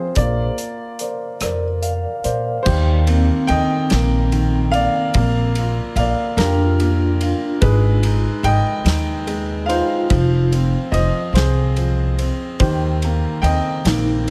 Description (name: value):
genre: acoustic folk-pop ballad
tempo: 48 BPM (dotted quarters)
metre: 6/8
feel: straight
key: Eb major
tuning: A4 = 440 Hz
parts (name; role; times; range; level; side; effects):
- warm upright piano; melody; 0.0-14.3 s; Eb3 to G5; -23 LUFS; equal; none
- vibraphone with soft mallets; arpeggios; 0.0-14.3 s; C4 to F5; -26 LUFS; equal; none
- upright bass; bass; 0.0-14.3 s; F1 to Bb2; -21 LUFS; equal; none
- loose indie drum kit; drums; 0.2-14.3 s; crash cymbal, hi-hat, kick drum, ride cymbal, rim click, snare drum; -27 LUFS; equal; none
room: little or no reverb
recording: lossy compression artefacts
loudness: -18 LUFS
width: mono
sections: 0.0-2.7 A section; 2.7-14.3 B section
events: upright piano fill 1.4-2.7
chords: 0.2 Bbadd9; 2.7 Eb6; 5.2 Bb6; 7.6 Abm; 10.1 Fm; 12.6 Eb6